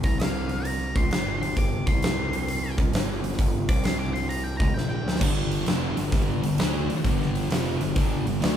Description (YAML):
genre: blues rock power trio and southern rock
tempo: 131 BPM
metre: 4/4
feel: swing 67% on 8ths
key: G minor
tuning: A4 = 441 Hz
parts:
  - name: octave-fuzz lead guitar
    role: melody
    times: 0.0-5.2 s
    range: F5 to D6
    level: -32 LUFS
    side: left 1 dB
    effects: distortion
  - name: fuzz picked electric bass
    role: bass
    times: 0.0-8.6 s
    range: F1 to D2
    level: -29 LUFS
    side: right 1 dB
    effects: overdrive
  - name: huge arena drum kit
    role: drums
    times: 0.0-8.6 s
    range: crash cymbal, hi-hat, kick drum, snare drum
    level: -25 LUFS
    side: equal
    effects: none
  - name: thick fuzz guitar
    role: riff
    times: 5.2-8.6 s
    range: F2 to D4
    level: -27 LUFS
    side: left 1 dB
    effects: distortion
room: light reverb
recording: band playing live in one room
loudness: -22 LUFS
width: side -9 dB against mid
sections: 0.0-5.2 A section; 5.2-8.6 B section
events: lead electric guitar solo 0.0-5.2; drum fill 4.8-5.2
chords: 0.0 C7sus4; 0.9 Gsus4; 1.8 N.C.; 3.6 Csus2; 4.5 Gm; 5.2 G5